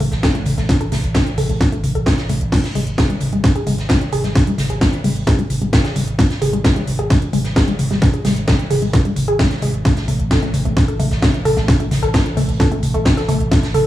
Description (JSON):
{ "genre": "driving peak-time techno", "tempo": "131 BPM", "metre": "4/4", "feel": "straight", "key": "unclear", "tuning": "A4 = 440 Hz", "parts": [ { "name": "resonant blip pluck", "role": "riff", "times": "0.0-13.8 s", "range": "G#3 to A4", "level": "-22 LUFS", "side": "left 1 dB", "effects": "chorus, sidechain pumping, tape echo" }, { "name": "saturated sub bass", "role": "bass", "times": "0.0-13.9 s", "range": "G#1 to A1", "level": "-23 LUFS", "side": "right 1 dB", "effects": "sidechain pumping, low-pass filter" }, { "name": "huge arena drum kit", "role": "drums", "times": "0.0-13.9 s", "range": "hi-hat, snare drum", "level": "-29 LUFS", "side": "right 1 dB", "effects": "sidechain pumping on hats, high-pass filter on hats, small room ambience, high-pass filter on snare, high-pass filter on room" }, { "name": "techno drum kit", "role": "drums", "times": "0.0-13.8 s", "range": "crash cymbal, hi-hat, snare drum, toms", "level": "-19 LUFS", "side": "left 1 dB", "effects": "overdrive, small room ambience" }, { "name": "electronic kick drum", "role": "drums", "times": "0.2-13.6 s", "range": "none", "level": "-17 LUFS", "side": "equal", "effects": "overdrive, small room ambience" } ], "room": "moderate stone room reverb, RT60 1.3 s", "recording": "small room ambience", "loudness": "-14 LUFS", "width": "side -14 dB against mid", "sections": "0.0-13.9 A section", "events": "filter sweep on synth arpeggio sound 0.0-13.9", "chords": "none" }